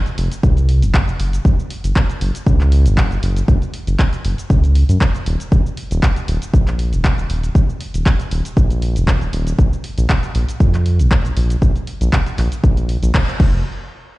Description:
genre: deep house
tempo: 118 BPM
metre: 4/4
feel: swing 54% on 16ths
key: unclear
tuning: A4 = 442 Hz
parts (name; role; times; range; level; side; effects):
- punchy analog drum machine; drums; 0.1-13.5 s; crash cymbal, handclaps, hi-hat, shaker; -26 LUFS; equal; overdrive
- round analog bass; bass; 0.2-13.6 s; Eb1 to Gb2; -16 LUFS; equal; sidechain pumping
- electronic kick drum; drums; 0.4-13.5 s; none; -15 LUFS; equal; none
room: digital ambience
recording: played on a big sound system in a bare room, cassette tape, large studio reverb, nothing above 10.4 kHz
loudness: -14 LUFS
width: side -19 dB against mid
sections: 0.0-13.7 A section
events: drop 0.0-13.7; band accent 13.1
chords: none

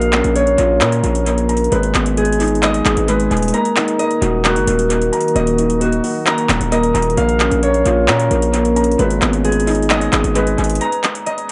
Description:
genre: hip hop, trap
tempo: 132 BPM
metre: 4/4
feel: half-time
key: Eb minor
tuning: A4 = 444 Hz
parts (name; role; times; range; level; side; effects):
- dark concert grand piano; accompaniment; 0.0-10.8 s; Ab3 to Bb5; -21 LUFS; equal; low-pass filter
- deep dark ambient pad; sustained chords; 0.3-10.8 s; Eb3 to Cb5; -26 LUFS; equal; chorus, built-in reverb
- concert harp; arpeggios; 0.0-11.5 s; Gb4 to Bb5; -22 LUFS; equal; low-pass filter, dub echo
- distorted 808-style bass; bass; 0.0-10.8 s; Eb1 to Bb2; -21 LUFS; equal; distortion
- trap drum kit; drums; 0.0-11.5 s; handclaps, hi-hat; -24 LUFS; equal; overdrive, dub echo
room: light reverb, digital ambience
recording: echo-heavy mix, nothing above 10.6 kHz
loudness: -16 LUFS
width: mono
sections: 0.0-10.8 A section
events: kick muted 3.5-4.0; break 10.8-11.5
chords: 0.0 Bbm; 1.7 Abm; 3.5 Ebm; 7.2 Bbm; 9.0 Abm; 10.8 Eb5

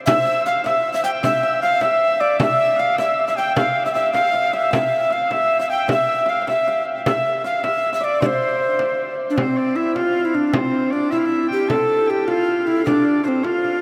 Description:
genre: medieval dance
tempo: 103 BPM (dotted quarters)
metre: 6/8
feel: straight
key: unclear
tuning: A4 = 440 Hz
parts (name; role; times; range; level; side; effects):
- hammered dulcimer; second line; 0.0-10.8 s; C5 to G5; -31 LUFS; equal; none
- mellow tenor recorder; melody; 0.1-13.8 s; C4 to G5; -20 LUFS; equal; slapback echo
- bright shawm; second line; 0.1-13.8 s; C5 to E6; -29 LUFS; equal; none
- frame drum; percussion; 0.1-13.7 s; none; -29 LUFS; equal; none
room: wet huge ambient reverb, RT60 7.5 s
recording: in a vast, echoing space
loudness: -19 LUFS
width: mono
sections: 0.1-9.4 A section; 9.4-13.8 B section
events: none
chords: none

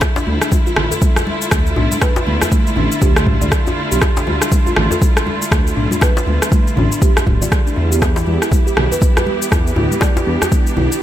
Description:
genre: afro house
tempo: 120 BPM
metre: 4/4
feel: swing 60% on 16ths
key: D dorian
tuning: A4 = 440 Hz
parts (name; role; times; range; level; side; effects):
- clear symphonic string section; sustained chords; 0.0-11.0 s; D3 to G4; -23 LUFS; right 2 dB; sidechain pumping
- afro-pop drum kit; drums; 0.0-11.0 s; rim click, shaker, toms; -20 LUFS; equal; none
- electronic kick drum; drums; 0.0-10.6 s; none; -15 LUFS; equal; overdrive
- djembe; percussion; 0.0-10.9 s; none; -25 LUFS; left 2 dB; none
- buzzing kalimba; arpeggios; 0.2-10.9 s; A3 to D5; -22 LUFS; equal; vintage 12-bit sampler grit, sidechain pumping, ping-pong delay
- dark detuned saw bass; bass; 0.3-10.9 s; D1 to E2; -18 LUFS; equal; sidechain pumping
- congas; percussion; 0.3-10.9 s; none; -26 LUFS; right 1 dB; none
room: little or no reverb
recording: none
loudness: -13 LUFS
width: side -12 dB against mid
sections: 0.0-11.0 A section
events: none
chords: 0.0 Dmadd9; 8.0 Em7

